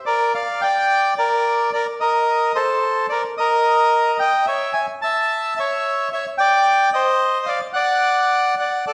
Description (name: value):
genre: tango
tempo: 109 BPM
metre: 4/4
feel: rubato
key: G minor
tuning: A4 = 440 Hz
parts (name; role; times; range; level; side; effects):
- bandoneon; solo; 0.1-8.9 s; A4 to A5; -19 LUFS; equal; none
room: wet recital hall reverb, RT60 1.4 s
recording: recorded in a church or concert hall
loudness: -19 LUFS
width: mono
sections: 0.1-8.9 A section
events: none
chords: 0.1 Gm; 2.3 Eb5; 4.5 A; 6.7 Cmadd9; 7.8 N.C.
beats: | 0.07 0.62 1.18 1.73 | 2.28 2.83 3.38 3.92 | 4.47 5.02 5.57 6.12 | 6.66 7.21 7.76 8.32 | 8.87